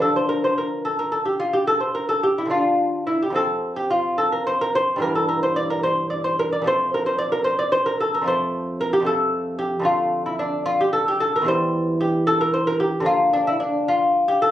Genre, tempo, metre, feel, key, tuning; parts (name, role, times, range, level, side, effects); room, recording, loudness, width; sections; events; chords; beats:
classical, baroque-style dance for lute; 74 BPM (dotted quarters); 12/8; rubato; D minor; A4 = 440 Hz
lute; solo; 0.0-14.5 s; E2 to D5; -19 LUFS; equal
moderate studio ambience, RT60 0.5 s; recorded on a phone in the room, club reverb; -19 LUFS; side -12 dB against mid
0.0-14.5 A section
0.0 Dm; 3.3 F5; 5.0 Edim/G; 6.7 F; 9.9 Dm/F; 11.5 C/E; 13.1 Bb/D
| 0.02 0.86 1.69 2.52 | 3.34 4.17 5.00 5.83 | 6.66 7.46 8.27 9.07 | 9.87 10.68 11.48 12.28 | 13.07 13.88